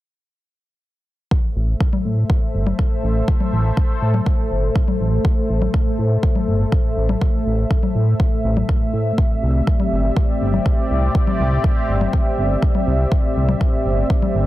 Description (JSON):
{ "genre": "melodic techno", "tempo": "122 BPM", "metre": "4/4", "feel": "straight", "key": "A minor", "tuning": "A4 = 442 Hz", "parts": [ { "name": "sweeping resonant pad", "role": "sustained chords", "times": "1.3-14.5 s", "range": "A3 to E5", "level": "-24 LUFS", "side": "equal", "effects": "chorus, vintage 12-bit sampler grit, sidechain pumping" }, { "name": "analog drone", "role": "drone", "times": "1.8-14.5 s", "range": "A2 to A3", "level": "-30 LUFS", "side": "right 2 dB", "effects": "chorus, sidechain pumping" }, { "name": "electronic kick drum", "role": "drums", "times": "1.3-14.2 s", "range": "none", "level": "-18 LUFS", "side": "equal", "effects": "none" }, { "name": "fat analog bass", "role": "bass", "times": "1.6-14.5 s", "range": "G1 to A2", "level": "-18 LUFS", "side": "equal", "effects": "sidechain pumping" }, { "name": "congas", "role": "drums", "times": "1.9-14.3 s", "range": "none", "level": "-25 LUFS", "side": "left 6 dB", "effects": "none" } ], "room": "digital ambience", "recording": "dense, heavily limited modern master", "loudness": "-16 LUFS", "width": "side -16 dB against mid", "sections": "1.3-14.5 A section", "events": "none", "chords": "1.3 Am; 9.2 Cadd9", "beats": "| 1.31 1.80 2.30 2.79 | 3.28 3.77 4.26 4.76 | 5.25 5.74 6.23 6.72 | 7.21 7.71 8.20 8.69 | 9.18 9.67 10.17 10.66 | 11.15 11.64 12.13 12.62 | 13.12 13.61 14.10" }